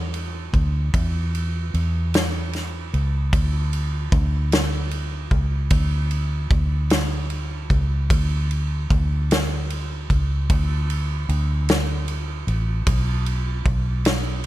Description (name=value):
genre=six-eight pop ballad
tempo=50 BPM (dotted quarters)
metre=6/8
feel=straight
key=unclear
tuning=A4 = 442 Hz
part: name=vintage muted fingered electric bass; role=bass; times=0.0-14.5 s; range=A1 to E2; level=-22 LUFS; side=equal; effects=none
part: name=loose indie drum kit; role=drums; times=0.1-14.5 s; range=kick drum, ride cymbal, snare drum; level=-24 LUFS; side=equal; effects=none
room=little or no reverb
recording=none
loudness=-20 LUFS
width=side -15 dB against mid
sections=0.0-14.5 A section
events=none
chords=none